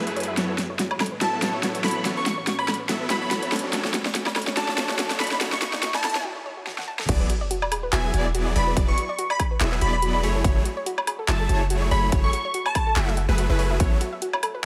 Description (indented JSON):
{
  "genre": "future bass",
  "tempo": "143 BPM",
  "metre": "4/4",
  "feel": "swing 55% on 16ths, half-time",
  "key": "A major",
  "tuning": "A4 = 440 Hz",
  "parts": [
    { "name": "ethereal airy pad", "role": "sustained chords", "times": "0.0-6.2 s", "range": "D2 to C#5", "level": "-44 LUFS", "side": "equal", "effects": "ensemble chorus, built-in reverb, sidechain pumping" },
    { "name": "supersaw chords", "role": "riff", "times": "0.0-14.0 s", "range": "F#3 to E5", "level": "-32 LUFS", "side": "equal", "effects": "sidechain pumping, delay" },
    { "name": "riser and sub drop", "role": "sound effects", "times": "0.0-8.8 s", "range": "none", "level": "-37 LUFS", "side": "equal", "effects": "none" },
    { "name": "soft round pluck", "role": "arpeggios", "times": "0.1-14.6 s", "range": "F#4 to A5", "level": "-35 LUFS", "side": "equal", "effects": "chorus, sidechain pumping, delay" },
    { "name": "big-room dance drum kit", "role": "drums", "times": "0.1-14.5 s", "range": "crash cymbal, handclaps, hi-hat, snare drum, woodblock", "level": "-29 LUFS", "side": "equal", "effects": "overdrive" },
    { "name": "plucky unison lead", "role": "melody", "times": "1.2-13.1 s", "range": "G#5 to C#6", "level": "-31 LUFS", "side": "equal", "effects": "lush chorus, sidechain pumping, delay" },
    { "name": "unison pluck", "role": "arpeggios", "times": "7.1-14.0 s", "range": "B4 to E5", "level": "-38 LUFS", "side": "equal", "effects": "sidechain pumping" },
    { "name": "warm 808-style bass", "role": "bass", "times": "7.1-14.0 s", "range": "E1 to A1", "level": "-26 LUFS", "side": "equal", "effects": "sidechain pumping" },
    { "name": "electronic kick drum", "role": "drums", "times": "7.1-13.9 s", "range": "none", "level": "-25 LUFS", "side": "equal", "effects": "overdrive" }
  ],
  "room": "light reverb, digital ambience",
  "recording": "high-pass filter",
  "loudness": "-24 LUFS",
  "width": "mono",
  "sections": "0.0-7.1 A section; 7.1-14.7 B section",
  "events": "build-up 0.0-7.1; drum fill 0.0-6.2, 6.7-7.1; filter sweep on supersaw synth 0.0-7.1; filter sweep on synth arpeggio sound 0.0-7.1; filter sweep on ambient pad 0.0-7.1; filter sweep 0.0-7.1; break 6.2-7.1; drop 7.1-14.7; impact 7.1-8.8",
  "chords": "0.4 A69; 3.5 Dmaj7; 7.1 E9; 10.2 F#m9; 13.8 A69"
}